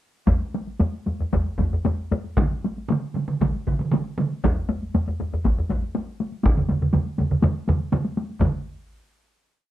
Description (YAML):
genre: japanese traditional, taiko drum ensemble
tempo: 114-128 BPM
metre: 4/4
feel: straight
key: none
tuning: none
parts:
  - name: taiko ensemble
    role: percussion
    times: 0.3-8.6 s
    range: none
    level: -26 LUFS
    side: left 1 dB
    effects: none
  - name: taiko ensemble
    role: percussion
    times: 0.3-8.9 s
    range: none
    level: -25 LUFS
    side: left 1 dB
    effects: none
  - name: taiko ensemble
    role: percussion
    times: 0.3-8.6 s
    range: none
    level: -24 LUFS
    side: equal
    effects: none
  - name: taiko ensemble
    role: percussion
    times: 2.4-8.9 s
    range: none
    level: -24 LUFS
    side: right 3 dB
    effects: none
room: moderate studio reverb, RT60 0.6 s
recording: none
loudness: -22 LUFS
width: side -14 dB against mid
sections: 0.3-8.4 A section; 8.4-9.7 final hit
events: speeding up 0.3-9.7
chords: none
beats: | 0.27 0.80 1.32 1.85 | 2.37 2.89 3.41 3.92 | 4.43 4.94 5.45 5.95 | 6.45 6.95 7.44 7.92 | 8.41